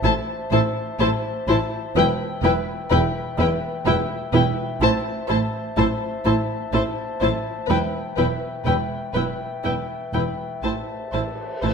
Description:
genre	cinematic, suspense film score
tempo	62 BPM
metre	3/4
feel	straight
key	E minor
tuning	A4 = 440 Hz
part	muted chamber violin section	melody	0.0-11.7 s	G5 to A5	-28 LUFS	left 6 dB	none
part	muted chamber violin section	second line	0.0-11.7 s	B4 to C5	-26 LUFS	left 3 dB	none
part	muted chamber viola section	accompaniment	0.0-11.7 s	E4	-27 LUFS	equal	none
part	glass harmonica	sustained chords	0.0-11.7 s	B4 to A5	-30 LUFS	left 4 dB	none
part	muted chamber cello section	bass	0.0-11.7 s	E2 to A2	-26 LUFS	right 3 dB	none
part	muted chamber double bass section	bass	0.0-11.7 s	E1 to A1	-27 LUFS	right 4 dB	none
part	cymbal swell	sound effects	10.8-11.7 s	none	-35 LUFS	equal	none
room	moderate scoring stage reverb, RT60 1.5 s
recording	none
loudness	-20 LUFS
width	side -6 dB against mid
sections	0.0-11.7 A section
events	cymbal swell 10.8-11.7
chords	0.0 Am; 2.0 Em; 4.8 Am; 7.7 Em; 10.6 Am

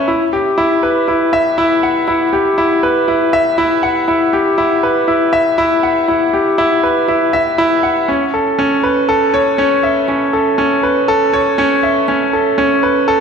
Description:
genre	electronica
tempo	120 BPM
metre	4/4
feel	straight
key	unclear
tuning	A4 = 440 Hz
part	clear concert grand piano	solo	0.0-13.2 s	C#4 to F#5	-11 LUFS	equal	none
room	wet scoring stage reverb, RT60 1.7 s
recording	none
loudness	-11 LUFS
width	side -6 dB against mid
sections	0.0-13.2 A section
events	none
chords	none

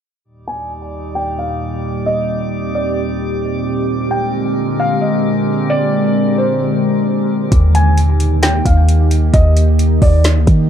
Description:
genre	hip hop, atmospheric cloud-rap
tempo	132 BPM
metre	4/4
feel	half-time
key	Eb major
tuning	A4 = 440 Hz
part	warbly tape-like pad	sustained chords	0.2-10.7 s	Eb2 to D5	-18 LUFS	equal	chorus, built-in reverb, sidechain pumping, low-pass filter
part	drifting glass-harmonics texture	texture	0.6-7.5 s	G3 to D6	-26 LUFS	equal	chorus, built-in reverb
part	felt-muted upright piano	melody	0.5-10.2 s	C5 to Ab5	-21 LUFS	right 1 dB	low-pass filter, ping-pong delay
part	clean 808-style bass	bass	7.5-10.7 s	D2 to Eb3	-11 LUFS	equal	none
part	smooth R&B drum kit	drums	7.5-10.6 s	hi-hat, kick drum, snare drum	-14 LUFS	equal	none
room	digital ambience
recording	dark, warm production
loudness	-12 LUFS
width	side -9 dB against mid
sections	0.2-7.5 A section; 7.5-10.7 B section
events	filter sweep 0.2-7.5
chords	0.2 Ebmaj7; 3.9 Bb13; 7.5 Eb

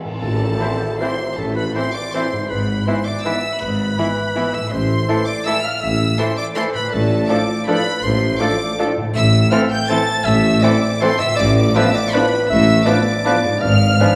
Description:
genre	classical, orchestral ballroom waltz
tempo	161 BPM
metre	3/4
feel	uneven beats, rubato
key	A minor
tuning	A4 = 440 Hz
part	warm clarinet	second line	0.0-14.2 s	A4 to A5	-25 LUFS	equal	none
part	warm oboe	second line	0.0-14.1 s	A4 to C5	-32 LUFS	equal	none
part	clear bassoon	accompaniment	0.0-14.1 s	E3 to F3	-30 LUFS	equal	none
part	concert harp	arpeggios	0.0-14.2 s	E2 to E5	-32 LUFS	equal	none
part	warm studio violin section	melody	0.2-14.2 s	A5 to A6	-26 LUFS	equal	none
part	mellow tuba	bass	0.2-13.9 s	G#1 to A1	-26 LUFS	equal	none
part	warm studio cello section	bass	0.2-13.9 s	G#2 to A2	-25 LUFS	equal	none
part	warm studio double bass section	bass	0.2-13.9 s	G#1 to A1	-25 LUFS	equal	none
part	tam-tam	percussion	0.2-1.7 s	none	-34 LUFS	equal	none
part	concert flute	second line	0.6-14.1 s	C5 to E5	-34 LUFS	equal	none
part	warm studio violin section	second line	0.6-14.1 s	C4 to C5	-30 LUFS	equal	none
part	rich studio viola section	accompaniment	0.6-14.1 s	E3 to C4	-31 LUFS	equal	none
part	mellow French horn section	sustained chords	0.6-14.2 s	A3 to E4	-30 LUFS	equal	none
part	mellow trombone section	sustained chords	0.6-14.1 s	G#2 to F3	-30 LUFS	equal	none
room	wet recital hall reverb, RT60 1.4 s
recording	recorded in a church or concert hall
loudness	-17 LUFS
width	mono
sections	0.2-14.2 A section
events	band accent 0.2-0.6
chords	0.2 Am; 2.5 E/G#; 4.7 Am; 6.9 Dm/A; 9.2 Am; 11.4 Bm7b5/A; 13.6 G#dim7

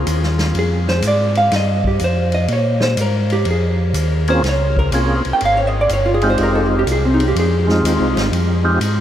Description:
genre	soul jazz organ trio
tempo	124 BPM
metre	4/4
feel	swing 67% on 8ths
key	F minor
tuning	A4 = 440 Hz
part	mellow tonewheel organ	bass	0.0-9.0 s	F1 to Bb2	-18 LUFS	left 1 dB	chorus vibrato, slow rotary speaker
part	vintage drum kit	drums	0.1-9.0 s	hi-hat, kick drum, ride cymbal, snare drum	-25 LUFS	left 1 dB	none
part	vintage hollow-body jazz guitar	accompaniment	0.6-8.1 s	C4 to G5	-19 LUFS	right 1 dB	none
part	percussive tonewheel organ	melody	4.3-8.8 s	Ab3 to Ab4	-21 LUFS	equal	slow rotary speaker, overdrive, chorus vibrato
room	wet huge ambient reverb, RT60 7.8 s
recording	in a vast, echoing space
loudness	-14 LUFS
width	side -11 dB against mid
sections	0.0-9.0 A section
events	hollow-body jazz guitar solo 0.0-9.0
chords	0.0 N.C.; 0.6 Fmadd9; 2.5 Bbm9; 6.4 Fm9

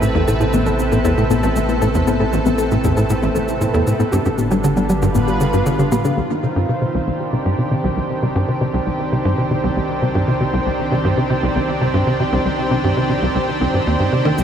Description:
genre	ambient, sequencer-driven space music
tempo	117 BPM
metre	4/4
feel	straight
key	C minor from 6.2 s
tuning	A4 = 437 Hz
part	lush unison pad	sustained chords	0.0-14.4 s	C3 to C5	-20 LUFS	right 1 dB	chorus, shimmer reverb
part	tight sequencer bass	riff	0.0-14.4 s	A1 to B3	-18 LUFS	equal	lush chorus, tape echo, shimmer reverb
part	round analog bass	bass	0.0-14.4 s	G1 to C2	-28 LUFS	equal	none
part	electronic shaker and toms	percussion	0.0-6.1, 14.4 s	none	-28 LUFS	left 2 dB	tape echo
part	bubbling stepped-filter texture	texture	0.0-6.2 s	B4	-31 LUFS	right 3 dB	chorus, built-in reverb, shimmer reverb
part	warbly dusty pluck	arpeggios	0.1-14.4 s	B3 to F5	-25 LUFS	moving between left 5 dB and right 3 dB	chorus, auto-pan, tape echo, shimmer reverb
room	wet echo chamber reverb, RT60 2.5 s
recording	echo-heavy mix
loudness	-15 LUFS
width	side -8 dB against mid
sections	0.0-6.2 A section; 6.2-14.4 B section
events	none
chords	0.0 Amadd9; 4.1 G7; 6.2 Cmadd9

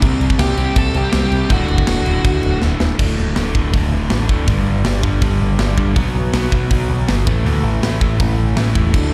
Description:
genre	punk rock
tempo	162 BPM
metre	4/4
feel	straight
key	D major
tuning	A4 = 441 Hz
part	crunchy overdriven guitar	riff	0.0-9.1 s	D2 to C4	-23 LUFS	equal	none
part	growling picked electric bass	bass	0.0-9.1 s	D1 to D2	-20 LUFS	equal	overdrive
part	tight metal drum kit	drums	0.0-9.0 s	crash cymbal, hi-hat, kick drum, snare drum	-21 LUFS	equal	none
part	bluesy overdriven lead guitar	melody	0.4-2.6 s	F#4 to A5	-24 LUFS	equal	distortion, slapback echo
room	little or no reverb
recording	live gig heard through the venue's PA, recital hall reverb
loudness	-16 LUFS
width	mono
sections	0.0-3.0 A section; 3.0-9.1 B section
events	drum fill 2.6-3.0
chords	0.0 C5; 1.5 D; 4.5 G5; 6.0 B5; 7.3 A5

